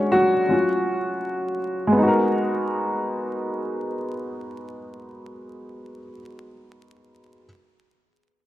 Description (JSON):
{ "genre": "hip hop", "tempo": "free time", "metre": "none", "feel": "none", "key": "G# dorian", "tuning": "A4 = 440 Hz", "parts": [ { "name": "warm upright piano", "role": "accompaniment", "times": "0.0-7.5 s", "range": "F#3 to C#5", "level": "-22 LUFS", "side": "equal", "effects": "none" } ], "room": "moderate plate reverb, RT60 2.8 s", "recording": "vinyl crackle", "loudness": "-21 LUFS", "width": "side -14 dB against mid", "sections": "0.0-2.0 A section; 2.0-4.9 B section", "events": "upright piano solo 0.0-2.0", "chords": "0.5 C#add11/F#; 2.0 G#m9", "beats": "free time" }